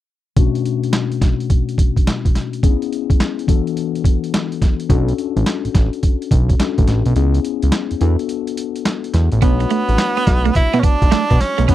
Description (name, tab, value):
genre	R&B, new jack swing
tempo	106 BPM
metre	4/4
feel	swing 65% on 16ths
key	B dorian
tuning	A4 = 439 Hz
part	mellow tine electric piano	accompaniment	0.4-11.7 s	B2 to C#5	-22 LUFS	left 10 dB	none
part	boom bap sampler-style drum kit	drums	0.4-11.7 s	handclaps, hi-hat, kick drum, snare drum	-16 LUFS	right 1 dB	overdrive
part	fat analog bass	bass	4.9-11.7 s	A1 to B2	-16 LUFS	right 1 dB	none
part	bright tenor saxophone	melody	9.4-11.7 s	B3 to E4	-19 LUFS	right 3 dB	none
part	clean electric guitar	riff	9.4-11.7 s	A3 to C#4	-20 LUFS	right 14 dB	analog chorus
room	little or no reverb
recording	dry, close 1970s-style studio recording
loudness	-14 LUFS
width	side -13 dB against mid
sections	0.4-9.4 A section; 9.4-11.7 B section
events	kick muted 7.2-9.4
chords	0.4 Bm9; 2.6 C#m7; 3.5 E9sus4; 4.9 Bm9; 7.2 C#m7; 8.0 E9sus4; 9.4 Bm9